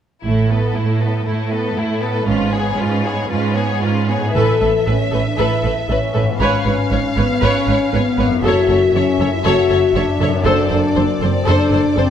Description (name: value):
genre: cinematic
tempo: 118 BPM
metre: 4/4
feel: straight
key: A major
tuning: A4 = 441 Hz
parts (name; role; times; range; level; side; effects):
- rich symphonic violin section; melody; 0.2-12.1 s; A4 to E#5; -25 LUFS; left 3 dB; none
- rich symphonic violin section; second line; 0.2-12.1 s; E4 to C#5; -23 LUFS; left 2 dB; none
- clear symphonic double bass section; bass; 0.2-12.0 s; F#1 to A1; -22 LUFS; right 4 dB; none
- warm symphonic cello section; bass; 0.2-12.1 s; F#2 to A2; -20 LUFS; right 4 dB; none
- warm symphonic viola section; accompaniment; 0.3-12.0 s; A3 to B4; -24 LUFS; right 2 dB; none
- concert harp; arpeggios; 4.2-12.1 s; F#2 to B4; -24 LUFS; left 7 dB; none
- timpani; percussion; 4.3-5.1 s; A2; -27 LUFS; right 1 dB; none
- warm French horn section; sustained chords; 4.4-12.1 s; B3 to A4; -18 LUFS; left 4 dB; none
room: moderate scoring stage reverb, RT60 1.9 s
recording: none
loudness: -14 LUFS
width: side -9 dB against mid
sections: 0.2-4.3 A section; 4.3-12.1 B section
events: none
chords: 0.2 Asus2; 2.3 C#7/G#; 4.3 Asus2; 6.4 C#7/G#; 8.4 F#m7; 10.5 D7/F#